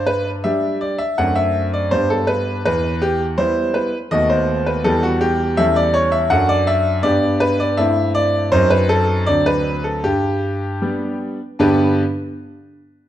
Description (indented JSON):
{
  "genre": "classical-period piano sonatina",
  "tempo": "81 BPM",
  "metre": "2/4",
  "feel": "straight",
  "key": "G major",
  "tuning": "A4 = 440 Hz",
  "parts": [
    { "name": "bright grand piano", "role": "solo", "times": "0.0-12.0 s", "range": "D2 to F#5", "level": "-15 LUFS", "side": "equal", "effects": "none" }
  ],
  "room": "wet recital hall reverb, RT60 1.3 s",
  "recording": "dark, warm production",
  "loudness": "-15 LUFS",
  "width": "side -12 dB against mid",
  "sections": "0.0-11.6 A section; 11.6-13.1 B section",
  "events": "none",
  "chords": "0.0 G5; 1.2 D7/F#; 1.9 G; 2.7 Em; 4.1 B7/D#; 4.9 Em; 5.6 A7/E; 6.3 D/F#; 7.0 G; 7.8 Am7/G; 8.5 F#dim7; 9.3 D7; 10.0 G",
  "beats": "0.43 | 1.18 1.92 | 2.65 3.39 | 4.12 4.86 | 5.58 6.32 | 7.04 7.78 | 8.52 9.27 | 10.04 10.81 | 11.59"
}